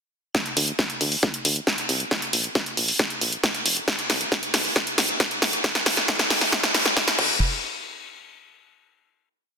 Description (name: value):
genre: uplifting trance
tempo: 136 BPM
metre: 4/4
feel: straight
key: unclear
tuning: A4 = 440 Hz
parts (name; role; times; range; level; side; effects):
- big-room dance drum kit; drums; 0.3-7.3 s; crash cymbal, hi-hat, snare drum; -21 LUFS; equal; high-pass filter on snare, high-pass filter on hats, high-pass filter on cymbals
- electronic kick drum; drums; 0.3-7.3 s; none; -26 LUFS; equal; high-pass filter on kick
- solid FM bass; bass; 0.6-7.4 s; F1 to D2; -32 LUFS; equal; sidechain pumping, high-pass filter
room: wet lush hall reverb, RT60 1.9 s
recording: dense, heavily limited modern master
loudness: -20 LUFS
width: side -6 dB against mid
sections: 0.3-7.4 build; 7.4-9.2 final hit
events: build-up 0.3-7.4; drum fill 0.3-7.4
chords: none